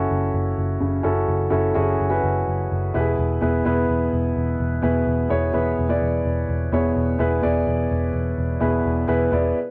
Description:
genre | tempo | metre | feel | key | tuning
pop | 127 BPM | 4/4 | straight | unclear | A4 = 440 Hz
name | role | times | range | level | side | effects
warm grand piano | accompaniment | 0.0-9.6 s | B2 to D5 | -24 LUFS | equal | cassette tape
vintage muted picked electric bass | bass | 0.0-9.5 s | E1 to F#1 | -26 LUFS | equal | none
room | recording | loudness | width
light reverb | home recording on cassette | -22 LUFS | mono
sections
0.0-9.7 A section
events
none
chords
0.0 F#m7; 2.9 E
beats
0.10 0.57 | 1.05 1.52 1.99 2.47 | 2.94 3.41 3.88 4.36 | 4.83 5.30 5.78 6.25 | 6.72 7.20 7.67 8.14 | 8.61 9.09 9.56

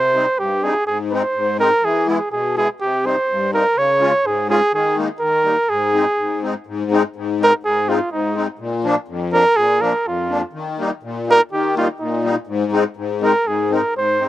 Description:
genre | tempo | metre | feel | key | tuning
alpine folk | 124 BPM | 2/4 | straight | Ab major | A4 = 440 Hz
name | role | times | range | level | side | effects
clear flugelhorn | melody | 0.0-14.3 s | Eb4 to Db5 | -16 LUFS | right 2 dB | none
musette accordion | accompaniment | 0.0-14.3 s | F2 to F4 | -21 LUFS | left 4 dB | slapback echo
room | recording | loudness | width
little or no reverb | recorded outdoors, with no room sound | -16 LUFS | side -14 dB against mid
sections
0.0-6.7 A section; 6.7-14.3 B section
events
none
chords
0.0 Cm; 0.9 Ab; 1.8 E; 2.8 Cm; 3.8 Db; 4.7 Ebsus4; 5.2 Eb; 5.7 Ab; 8.6 Bb; 10.6 Eb; 12.5 Ab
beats
0.39 | 0.87 1.35 | 1.83 2.32 | 2.81 3.29 | 3.78 4.26 | 4.74 5.22 | 5.70 6.19 | 6.68 7.16 | 7.64 8.12 | 8.60 9.09 | 9.57 10.06 | 10.55 11.04 | 11.53 12.01 | 12.49 12.97 | 13.46 13.95

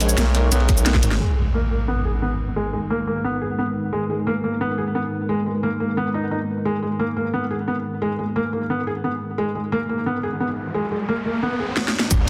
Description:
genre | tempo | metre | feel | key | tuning
dark technical drum and bass | 176 BPM | 4/4 | straight | G# minor | A4 = 438 Hz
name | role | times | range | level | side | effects
dark analog pad | sustained chords | 0.0-10.7 s | G#3 to C#5 | -30 LUFS | equal | chorus, sidechain pumping
felt-muted upright piano | arpeggios | 0.0-11.8 s | G#3 to G#4 | -26 LUFS | equal | sidechain pumping, low-pass filter, digital delay
growling FM bass | bass | 0.0-1.0 s | A#1 to B1 | -20 LUFS | equal | none
crunchy breakbeat drum kit | drums | 0.0-1.2, 12.1-12.3 s | ride cymbal, snare drum | -37 LUFS | equal | high-pass filter on cymbals, high-pass filter on snare, high-pass filter on room
drum and bass drum kit | drums | 0.0-1.2, 11.8-12.2 s | cabasa, hi-hat, snare drum | -24 LUFS | equal | overdrive
electronic kick drum | drums | 0.7-1.0, 12.1-12.2 s | none | -21 LUFS | equal | overdrive
detuned saw bass | bass | 1.0-1.2, 12.1-12.3 s | G#1 | -24 LUFS | equal | chorus, overdrive
impact and riser | sound effects | 1.2-2.6, 10.3-12.3 s | none | -28 LUFS | equal | none
room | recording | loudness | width
moderate digital room reverb, RT60 1.2 s | dense, heavily limited modern master | -23 LUFS | mono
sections
0.0-1.2 A section; 1.2-12.1 B section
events
drop 0.0-1.2; drum fill 0.9-1.2, 11.8-12.1; impact 1.2-2.6, 12.1; filter sweep on analog synth pad 1.2-12.1; filter sweep on felt piano 1.2-12.1; riser 10.3-12.1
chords
0.0 G#m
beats
0.18 0.52 0.86 | 1.20 1.54 1.88 2.22 | 2.56 2.90 3.24 3.58 | 3.93 4.27 4.61 4.95 | 5.29 5.63 5.97 6.31 | 6.65 6.99 7.33 7.68 | 8.02 8.36 8.70 9.04 | 9.38 9.72 10.06 10.40 | 10.74 11.09 11.43 11.77 | 12.11

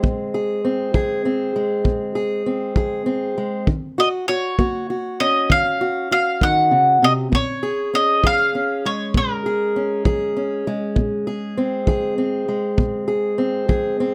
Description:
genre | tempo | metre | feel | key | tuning
acoustic country blues, solo or duo | 66 BPM (dotted quarters) | 12/8 | straight | Bb minor | A4 = 440 Hz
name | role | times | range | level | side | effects
fingerpicked steel-string acoustic guitar | accompaniment | 0.0-14.1 s | Bb2 to Ab4 | -23 LUFS | equal | none
kick drum | drums | 0.0-13.8 s | none | -23 LUFS | equal | none
bowl-back mandolin | melody | 4.0-10.6 s | Bb4 to Gb5 | -20 LUFS | equal | none
room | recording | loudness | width
light reverb | close, detailed microphones | -20 LUFS | mono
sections
0.0-14.1 A section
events
none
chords
0.0 Bbsus2; 3.7 Ebm9; 7.3 Bbm9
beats
| 0.02 0.93 1.85 2.76 | 3.67 4.58 5.49 6.40 | 7.31 8.22 9.13 10.04 | 10.96 11.87 12.78 13.69

